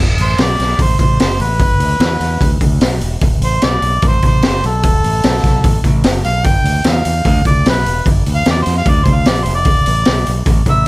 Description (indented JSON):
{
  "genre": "blues rock power trio and southern rock",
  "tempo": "149 BPM",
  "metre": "4/4",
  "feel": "straight",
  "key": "unclear",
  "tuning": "A4 = 439 Hz",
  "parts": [
    { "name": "growling fingered electric bass", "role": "bass", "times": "0.0-10.8 s", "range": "D1 to F2", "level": "-16 LUFS", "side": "equal", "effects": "overdrive" },
    { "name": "warm harmonica", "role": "melody", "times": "0.2-10.9 s", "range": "A4 to G5", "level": "-18 LUFS", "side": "equal", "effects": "overdrive, digital delay" },
    { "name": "raw garage drum kit", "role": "drums", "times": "0.2-10.8 s", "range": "hi-hat, kick drum, snare drum", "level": "-13 LUFS", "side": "equal", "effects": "none" }
  ],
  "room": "light reverb",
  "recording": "none",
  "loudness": "-11 LUFS",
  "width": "side -21 dB against mid",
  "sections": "0.0-10.9 A section",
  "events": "harmonica solo 0.0-10.9",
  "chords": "0.0 D5; 1.6 G; 3.2 D; 6.5 G; 8.1 Gm7; 9.7 D5",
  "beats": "0.39 0.79 1.20 | 1.60 2.01 2.41 2.82 | 3.22 3.63 4.03 4.43 | 4.84 5.24 5.65 6.05 | 6.45 6.86 7.26 7.66 | 8.06 8.46 8.86 9.27 | 9.67 10.07 10.47 10.87"
}